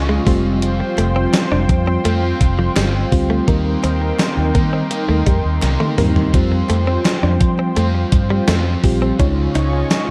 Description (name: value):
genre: 1980s-style pop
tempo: 84 BPM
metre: 4/4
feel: straight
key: unclear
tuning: A4 = 441 Hz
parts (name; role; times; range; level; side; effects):
- FM electric piano with tremolo; accompaniment; 0.0-10.1 s; Db3 to Db5; -24 LUFS; equal; none
- overdriven semi-hollow guitar; accompaniment; 0.0-10.1 s; Db3 to F4; -30 LUFS; equal; analog chorus
- lush unison pad; sustained chords; 0.0-10.1 s; Eb4 to Db6; -27 LUFS; equal; chorus
- vintage muted fingered electric bass; bass; 0.0-9.8 s; F1 to F3; -21 LUFS; equal; none
- direct-recorded clean electric guitar; riff; 0.1-9.9 s; F3 to Eb4; -26 LUFS; equal; subtle chorus, delay
- gated 80s digital drum machine; drums; 0.3-10.1 s; hi-hat, kick drum, snare drum, tambourine, toms; -20 LUFS; equal; gated reverb, gated reverb snare
- group handclap; percussion; 1.0-10.1 s; none; -39 LUFS; equal; none
room: light reverb, digital ambience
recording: dark, warm production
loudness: -17 LUFS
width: mono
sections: 0.0-10.1 A section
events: drum fill 5.6-6.3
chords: 0.3 Fsus2; 3.5 Eb6; 6.3 Fsus2; 9.2 Dbadd9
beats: | 0.62 1.34 2.05 2.77 | 3.48 4.20 4.91 5.62 | 6.34 7.05 7.77 8.48 | 9.20 9.91